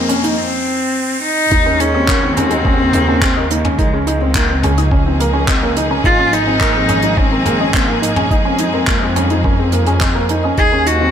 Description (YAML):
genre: piano and strings electronica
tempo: 106 BPM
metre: 4/4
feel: straight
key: Eb dorian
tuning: A4 = 443 Hz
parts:
  - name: warm cello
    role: melody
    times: 0.0-11.1 s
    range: Ab3 to Ab4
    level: -17 LUFS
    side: left 1 dB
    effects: none
  - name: clear symphonic string section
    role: sustained chords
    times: 0.0-11.1 s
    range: Db3 to Ab4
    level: -22 LUFS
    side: equal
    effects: none
  - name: felt-muted upright piano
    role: riff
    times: 0.0-11.1 s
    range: Bb3 to Eb4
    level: -19 LUFS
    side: right 1 dB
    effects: digital delay
  - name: rich studio double bass section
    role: bass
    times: 0.0-11.1 s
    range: Ab1 to F2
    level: -19 LUFS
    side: equal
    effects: sidechain pumping
  - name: riser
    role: sound effects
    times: 0.0-1.5 s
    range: none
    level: -23 LUFS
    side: left 1 dB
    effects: none
  - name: soft round pluck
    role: arpeggios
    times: 0.1-11.1 s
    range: C4 to Eb5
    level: -24 LUFS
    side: left 3 dB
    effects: chorus, sidechain pumping, digital delay
  - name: soft brush drum kit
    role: drums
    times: 0.1-11.0 s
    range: handclaps, hi-hat, toms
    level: -20 LUFS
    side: equal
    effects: high-pass filter on hats, high-pass filter on toms, high-pass filter on snare, high-pass filter on room
  - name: electronic kick drum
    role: drums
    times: 1.5-10.7 s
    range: none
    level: -17 LUFS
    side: equal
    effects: none
room: light reverb, studio reverb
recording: none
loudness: -12 LUFS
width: side -8 dB against mid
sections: 0.0-1.5 A section; 1.5-11.1 B section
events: build-up 0.0-1.5; riser 0.0-1.5; filter sweep on cello 0.0-1.5; drop 1.5-11.1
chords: 0.0 Fm; 1.5 Ebm; 3.8 Dbadd9; 6.0 Absus2; 8.3 Fm; 10.6 Ebm